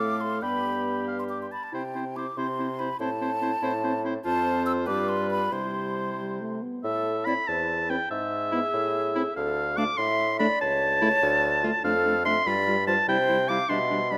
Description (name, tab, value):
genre	quick classical-period movement for wind quintet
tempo	96 BPM (dotted quarters)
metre	6/8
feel	rubato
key	C major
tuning	A4 = 440 Hz
part	mellow hollow silver concert flute	melody	0.0-14.2 s	G#4 to E6	-32 LUFS	equal	none
part	warm oboe	second line	0.0-14.2 s	B4 to D6	-29 LUFS	equal	none
part	clear clarinet	accompaniment	0.0-14.2 s	D4 to A4	-38 LUFS	equal	none
part	dark French horn	accompaniment	0.0-14.2 s	G3 to C4	-35 LUFS	equal	none
part	mellow bassoon	bass	0.0-14.2 s	C#2 to C3	-34 LUFS	equal	none
room	moderate concert hall reverb, RT60 2.3 s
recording	close, detailed microphones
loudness	-26 LUFS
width	mono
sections	0.0-6.8 A section; 6.8-14.2 B section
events	none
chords	0.4 G; 1.7 C; 3.0 Am; 4.3 F; 4.9 G7; 5.5 C; 6.8 Am; 8.1 E/G#; 8.7 A5; 9.4 Dm; 10.6 A/C#; 11.2 Dm; 11.8 Dm/F; 12.5 G7; 13.1 C